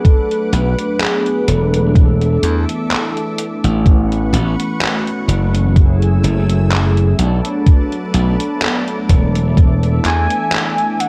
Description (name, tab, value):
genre	vaporwave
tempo	63 BPM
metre	4/4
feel	swing 54% on 16ths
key	B dorian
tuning	A4 = 437 Hz
part	warm velvety synth lead	melody	0.0-3.4, 10.1-11.1 s	G#4 to G#5	-23 LUFS	equal	chorus, vintage 12-bit sampler grit, tape echo
part	mellow synth brass	accompaniment	0.0-11.1 s	E3 to B4	-23 LUFS	equal	lush chorus, tape echo
part	lush unison pad	sustained chords	0.0-11.1 s	A3 to E6	-32 LUFS	equal	chorus
part	electronic kick drum	drums	0.0-9.8 s	none	-13 LUFS	equal	none
part	detuned 8-bit digital drum machine	drums	0.1-11.1 s	handclaps, hi-hat	-24 LUFS	equal	gated reverb
part	glassy slap bass	bass	0.5-10.3 s	E1 to E2	-17 LUFS	equal	tube saturation
room	digital ambience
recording	cassette tape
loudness	-15 LUFS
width	mono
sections	0.0-11.1 A section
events	none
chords	0.0 Bm7; 2.0 E7sus4; 3.9 A69; 5.8 F#m9; 7.2 Bm7; 9.6 E7sus4